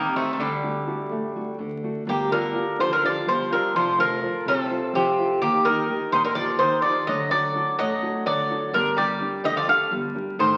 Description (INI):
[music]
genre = greek folk, Greek bouzouki band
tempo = 252 BPM (eighths)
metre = 7/8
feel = straight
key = G minor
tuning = A4 = 440 Hz
[part]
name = Greek bouzouki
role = melody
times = 0.0-10.6 s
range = G3 to F5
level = -25 LUFS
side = equal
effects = none
[part]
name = Greek bouzouki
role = second line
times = 0.0-10.6 s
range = C3 to Bb3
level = -32 LUFS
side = equal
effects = none
[part]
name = nylon-string guitar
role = accompaniment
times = 0.0-10.6 s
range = C3 to C5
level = -32 LUFS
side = equal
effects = none
[part]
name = upright bass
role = bass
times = 0.0-10.6 s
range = F1 to Eb2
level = -37 LUFS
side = equal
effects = none
[sound]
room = wet large studio reverb, RT60 1.3 s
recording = very old 78 rpm record, vinyl crackle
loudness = -23 LUFS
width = mono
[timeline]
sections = 0.0-2.1 A section; 2.1-10.6 B section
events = none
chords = 0.4 D; 2.1 Gm7; 3.7 F; 5.4 Eb; 7.1 D; 8.7 Gm